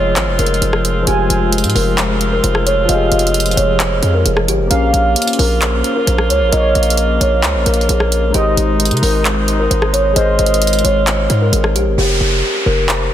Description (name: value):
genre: hip hop, trap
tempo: 132 BPM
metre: 4/4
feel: half-time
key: F minor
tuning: A4 = 440 Hz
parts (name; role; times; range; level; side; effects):
- kalimba; melody; 0.0-13.1 s; G4 to Eb5; -18 LUFS; equal; low-pass filter
- barky tine electric piano; accompaniment; 0.0-12.0 s; F3 to F5; -21 LUFS; left 4 dB; phaser, low-pass filter
- warm woodwind section; sustained chords; 0.0-12.0 s; C3 to F4; -23 LUFS; right 2 dB; none
- hard-hitting 808-style bass; bass; 0.0-13.1 s; F1 to C3; -16 LUFS; equal; none
- downlifter; sound effects; 0.0-1.1, 12.0-13.1 s; none; -21 LUFS; equal; none
- trap drum kit; drums; 0.2-13.0 s; handclaps, hi-hat, rim click; -19 LUFS; equal; soft clipping on snare
- warm velvety synth lead; second line; 1.1-10.6 s; C5 to Ab5; -21 LUFS; right 2 dB; chorus, tape echo
room: light reverb, digital ambience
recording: dense, heavily limited modern master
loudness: -12 LUFS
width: side -11 dB against mid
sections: 0.0-12.0 A section; 12.0-13.1 B section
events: hi-hats muted 12.0-13.1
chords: 0.0 Fmadd9; 4.7 Bbm; 8.3 Ab; 12.0 Fsus2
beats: 0.16 0.62 | 1.07 1.52 1.98 2.43 | 2.89 3.34 3.80 4.25 | 4.71 5.16 5.62 6.07 | 6.53 6.98 7.43 7.89 | 8.34 8.80 9.25 9.71 | 10.16 10.62 11.07 11.53 | 11.98 12.43 12.89